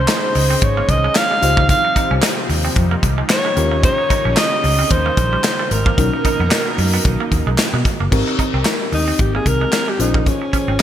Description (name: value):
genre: early-eighties boogie funk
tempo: 112 BPM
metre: 4/4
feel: swing 56% on 16ths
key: Ab major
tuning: A4 = 440 Hz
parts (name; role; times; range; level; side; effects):
- breathy alto saxophone; melody; 0.0-10.8 s; Db4 to F5; -19 LUFS; right 1 dB; none
- mellow FM electric piano; accompaniment; 0.0-10.8 s; C4 to C5; -25 LUFS; left 3 dB; chorus, phaser
- lush unison pad; sustained chords; 0.0-8.1 s; B2 to C5; -27 LUFS; equal; chorus
- semi-hollow electric guitar; riff; 0.0-10.8 s; G3 to Eb4; -27 LUFS; right 5 dB; wide subtle chorus
- vintage muted fingered electric bass; bass; 0.0-10.8 s; F#1 to B2; -18 LUFS; equal; none
- modern studio drum kit; drums; 0.1-10.8 s; crash cymbal, handclaps, hi-hat, kick drum, snare drum; -18 LUFS; equal; gated reverb
room: moderate lush hall reverb, RT60 2.0 s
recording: bright 1980s-style digital production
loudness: -14 LUFS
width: side -10 dB against mid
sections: 0.0-8.1 A section; 8.1-10.8 B section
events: alto saxophone solo 8.1-10.8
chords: 0.0 Bbm11 (rootless); 1.4 Dbmaj9#11; 3.6 Eb7; 6.0 Bmaj7; 8.1 Abmaj7; 10.0 Bbm9